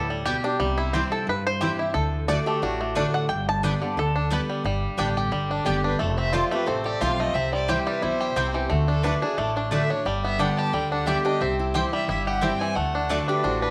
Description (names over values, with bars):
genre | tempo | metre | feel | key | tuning
bluegrass | 178 BPM | 4/4 | swing 54% on 8ths | G major | A4 = 440 Hz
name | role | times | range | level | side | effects
bluegrass banjo | melody | 0.0-13.7 s | D3 to A5 | -29 LUFS | equal | none
picked steel-string acoustic guitar | accompaniment | 0.0-13.7 s | F2 to G4 | -30 LUFS | equal | none
upright bass | bass | 0.0-13.7 s | F1 to G2 | -32 LUFS | equal | none
mandolin | stabs | 0.3-13.2 s | A3 to A5 | -35 LUFS | equal | none
lap resonator guitar | second line | 0.4-3.0, 6.5-7.1, 11.2-13.7 s | E4 to A4 | -32 LUFS | equal | none
dark fiddle | melody | 5.5-13.7 s | D4 to A5 | -32 LUFS | equal | none
room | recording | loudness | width
moderate echo chamber reverb, RT60 1.9 s | none | -24 LUFS | mono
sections
0.0-4.6 A section; 4.6-13.7 B section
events
five-string banjo solo 0.0-4.6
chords
0.0 G; 0.6 C; 1.9 D; 3.3 Gadd9; 4.6 G; 6.0 F; 7.3 C; 8.7 D; 10.1 G; 11.4 C; 12.8 D